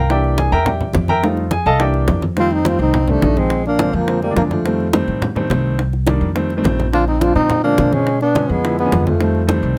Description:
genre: Afro-Cuban jazz.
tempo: 211 BPM.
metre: 4/4.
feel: straight.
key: F mixolydian.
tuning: A4 = 438 Hz.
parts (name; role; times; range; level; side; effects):
warm baby grand piano; accompaniment; 0.0-9.8 s; D3 to Bb5; -22 LUFS; equal; none.
upright bass; bass; 0.0-9.8 s; Bb1 to B2; -22 LUFS; equal; none.
bongos; percussion; 0.1-9.6 s; none; -25 LUFS; equal; none.
congas; percussion; 0.1-9.8 s; none; -25 LUFS; equal; none.
mellow trombone; melody; 2.4-9.6 s; A3 to F4; -20 LUFS; equal; none.
breathy tenor saxophone; second line; 2.4-9.6 s; F3 to D4; -26 LUFS; equal; none.
room: little or no reverb.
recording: close, detailed microphones.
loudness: -17 LUFS.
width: mono.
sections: 0.0-2.4 A section; 2.4-9.8 B section.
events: grand piano solo 0.0-2.4.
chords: 0.1 C9; 1.2 F9; 1.8 C9; 2.4 F9; 3.5 Bb9; 4.7 F9; 5.8 Cm7; 6.4 F9; 6.9 Bb9; 8.1 Bdim7; 9.2 F9.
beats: | 0.10 0.38 0.67 0.95 | 1.24 1.52 1.80 2.09 | 2.37 2.66 2.94 3.23 | 3.51 3.80 4.08 4.37 | 4.65 4.94 5.22 5.51 | 5.79 6.08 6.36 6.64 | 6.93 7.21 7.50 7.78 | 8.07 8.35 8.64 8.92 | 9.21 9.49 9.77.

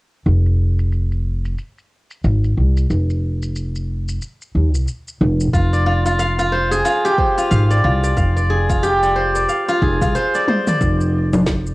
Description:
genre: organic downtempo.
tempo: 91 BPM.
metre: 4/4.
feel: swing 60% on 16ths.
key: F dorian.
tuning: A4 = 441 Hz.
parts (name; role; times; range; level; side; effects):
upright bass; bass; 0.3-11.7 s; F1 to Eb2; -17 LUFS; equal; none.
deep house drum kit; drums; 0.3-11.7 s; congas, shaker, snare drum, toms; -23 LUFS; equal; low-pass filter on perc, studio ambience, cassette tape, low-pass filter on toms, low-pass filter on snare.
steel-string zither; arpeggios; 5.5-11.7 s; F4 to F5; -17 LUFS; equal; cassette tape, analog delay.
electronic kick drum; drums; 5.5-11.6 s; none; -21 LUFS; equal; studio ambience, cassette tape.
room: moderate studio reverb, RT60 0.5 s.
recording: home recording on cassette.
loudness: -15 LUFS.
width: side -20 dB against mid.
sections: 0.3-10.8 A section.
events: filter sweep on drum 0.3-10.8; drum fill 10.5-10.8.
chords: 0.3 N.C.; 5.5 Fm69; 10.8 Fm.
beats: | 0.26 0.92 1.58 2.24 | 2.90 3.56 4.22 4.88 | 5.54 6.20 6.86 7.51 | 8.17 8.83 9.49 10.15 | 10.81 11.47.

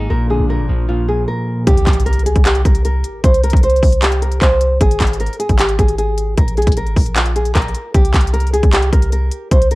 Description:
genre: hip hop, trap.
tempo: 153 BPM.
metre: 4/4.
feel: half-time.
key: unclear.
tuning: A4 = 441 Hz.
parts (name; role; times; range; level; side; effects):
nylon-string guitar; melody; 0.0-9.8 s; F4 to C5; -19 LUFS; equal; none.
electric guitar at the edge of break-up; accompaniment; 0.0-1.7 s; Ab2 to Eb4; -20 LUFS; right 1 dB; none.
hollow soft pad; sustained chords; 0.0-1.3 s; F3 to D4; -28 LUFS; left 4 dB; chorus.
warm 808-style bass; bass; 0.0-9.8 s; Ab1 to C2; -16 LUFS; equal; none.
trap drum kit; drums; 1.7-9.8 s; handclaps, hi-hat, kick drum; -14 LUFS; equal; none.
impact; sound effects; 1.7-3.2 s; none; -24 LUFS; equal; none.
room: little or no reverb.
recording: dark, warm production.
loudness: -12 LUFS.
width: side -20 dB against mid.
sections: 0.0-1.7 A section; 1.7-9.8 B section.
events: stop 1.3-1.7; impact 1.7-3.2.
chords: 0.1 Bb; 1.7 C5; 4.8 Absus2; 7.9 C5.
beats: | 0.10 0.49 0.89 1.28 | 1.67 2.06 2.46 2.85 | 3.24 3.63 4.02 4.42 | 4.81 5.20 5.59 5.98 | 6.38 6.77 7.16 7.55 | 7.95 8.34 8.73 9.12 | 9.51.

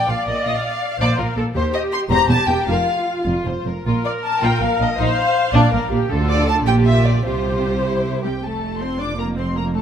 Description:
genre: quick classical-period movement for string orchestra.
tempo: 100-111 BPM (dotted quarters).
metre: 6/8.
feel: rubato.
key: Bb major, F major from 6.1 s.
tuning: A4 = 441 Hz.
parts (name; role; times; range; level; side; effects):
muted symphonic violin section; melody; 0.0-9.8 s; Bb3 to D6; -26 LUFS; left 4 dB; none.
muted symphonic violin section; second line; 0.0-9.8 s; G4 to C6; -22 LUFS; left 3 dB; none.
muted symphonic viola section; accompaniment; 0.0-9.8 s; G3 to D5; -24 LUFS; right 1 dB; none.
muted symphonic cello section; bass; 0.1-9.8 s; Eb2 to D3; -24 LUFS; right 2 dB; none.
muted symphonic double bass section; bass; 0.1-9.8 s; E1 to Eb2; -22 LUFS; right 2 dB; none.
room: moderate scoring stage reverb, RT60 1.8 s.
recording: close, detailed microphones.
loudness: -16 LUFS.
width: side -8 dB against mid.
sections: 0.0-8.4 A section; 8.4-9.8 B section.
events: none.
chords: 0.5 Bbadd11 (rootless); 1.0 Bb; 1.6 C5; 2.1 C7; 2.7 Bb5/F; 3.9 Bb5; 5.0 F5; 5.5 Bb; 6.1 Dm; 6.7 Gm7/Bb; 7.3 Csus4; 8.4 F.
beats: | 0.46 1.01 | 1.55 2.10 | 2.68 3.27 | 3.86 4.42 | 4.99 5.54 | 6.10 6.67 | 7.25 7.85 | 8.44 9.00 | 9.57.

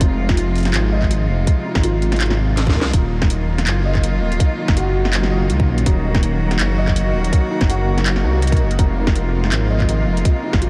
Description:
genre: half-time drum and bass.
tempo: 164 BPM.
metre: 4/4.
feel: swing 55% on 16ths, half-time.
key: Eb dorian.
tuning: A4 = 443 Hz.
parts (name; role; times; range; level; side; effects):
rich chamber cello section; sustained chords; 0.0-10.7 s; C3 to Gb4; -26 LUFS; equal; sidechain pumping.
felt-muted upright piano; arpeggios; 0.0-10.7 s; Bb3 to Eb5; -28 LUFS; equal; ensemble chorus, diffuse ambient delay.
dark detuned saw bass; bass; 0.0-10.7 s; Eb1 to Db2; -21 LUFS; equal; none.
drum and bass drum kit; drums; 0.0-10.7 s; handclaps, hi-hat, snare drum; -27 LUFS; equal; none.
electronic kick drum; drums; 0.0-10.6 s; none; -19 LUFS; equal; none.
pulsing gated texture; texture; 2.9-10.7 s; Bb3 to Bb4; -35 LUFS; equal; none.
room: light reverb.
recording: none.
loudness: -17 LUFS.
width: mono.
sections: 0.0-2.9 A section; 2.9-10.7 A section.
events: drop 0.0-2.9, 2.9-10.7; drum fill 2.6-2.9.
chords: 0.0 Fm; 2.9 Ebmadd9; 8.8 Fm.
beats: | 0.01 0.38 0.74 1.11 | 1.47 1.84 2.20 2.57 | 2.94 3.30 3.67 4.03 | 4.40 4.76 5.13 5.50 | 5.86 6.23 6.59 6.96 | 7.33 7.69 8.06 8.42 | 8.79 9.16 9.52 9.89 | 10.25 10.62.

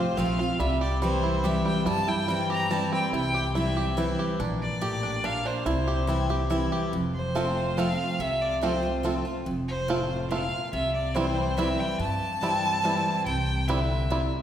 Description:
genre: bluegrass.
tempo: 142 BPM.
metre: 3/4.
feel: straight.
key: C mixolydian.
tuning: A4 = 441 Hz.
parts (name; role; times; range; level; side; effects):
clear fiddle; melody; 0.0-14.3 s; C5 to Bb5; -30 LUFS; equal; none.
picked steel-string acoustic guitar; accompaniment; 0.0-14.4 s; F2 to F4; -29 LUFS; left 1 dB; none.
bluegrass banjo; arpeggios; 0.0-14.2 s; G3 to G4; -30 LUFS; right 2 dB; none.
upright bass; bass; 0.0-14.3 s; F1 to G2; -31 LUFS; equal; none.
room: wet scoring stage reverb, RT60 1.7 s.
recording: recorded in a church or concert hall.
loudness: -24 LUFS.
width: side -10 dB against mid.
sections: 0.0-6.9 A section; 6.9-14.4 A section.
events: none.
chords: 0.0 F; 0.6 C; 4.4 Bb; 5.7 C; 6.9 F; 10.7 C.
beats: 0.18 | 0.60 1.02 1.45 | 1.87 2.29 2.71 | 3.13 3.55 3.98 | 4.40 4.82 5.24 | 5.66 6.09 6.51 | 6.93 7.35 7.78 | 8.20 8.62 9.04 | 9.46 9.89 10.31 | 10.73 11.15 11.58 | 12.00 12.42 12.84 | 13.27 13.69 14.11.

